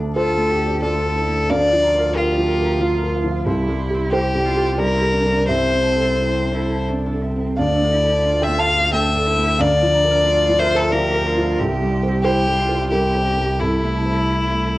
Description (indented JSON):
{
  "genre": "neoclassical piano and strings",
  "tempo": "84-93 BPM",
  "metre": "3/4",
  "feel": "rubato",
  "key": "D minor",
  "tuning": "A4 = 440 Hz",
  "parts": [
    { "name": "felt-muted upright piano", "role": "accompaniment", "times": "0.0-14.8 s", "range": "C2 to A5", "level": "-22 LUFS", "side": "right 1 dB", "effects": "plate reverb" },
    { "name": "concert harp", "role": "arpeggios", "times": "0.0-14.8 s", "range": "C4 to Bb5", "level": "-32 LUFS", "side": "equal", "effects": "plate reverb, analog delay" },
    { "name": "warm double bass", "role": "bass", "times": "0.0-14.8 s", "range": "C2 to D2", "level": "-23 LUFS", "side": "equal", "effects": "transformer saturation" },
    { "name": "clear violin", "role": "melody", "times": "0.2-14.8 s", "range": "E4 to F5", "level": "-19 LUFS", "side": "left 1 dB", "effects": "cassette tape, plate reverb" },
    { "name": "clear cello", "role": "second line", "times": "0.2-14.8 s", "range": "C4 to G4", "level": "-28 LUFS", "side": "right 4 dB", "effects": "plate reverb" }
  ],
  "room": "moderate small room reverb, RT60 0.5 s",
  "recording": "home recording on cassette, nothing above 10.5 kHz",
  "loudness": "-16 LUFS",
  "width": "side -17 dB against mid",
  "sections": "0.0-14.8 A section",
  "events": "none",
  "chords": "0.0 Dm; 1.5 Bb/D; 3.5 C; 5.5 Am/C; 7.6 Dm; 9.6 Bb/D; 11.6 C; 13.6 Am/C"
}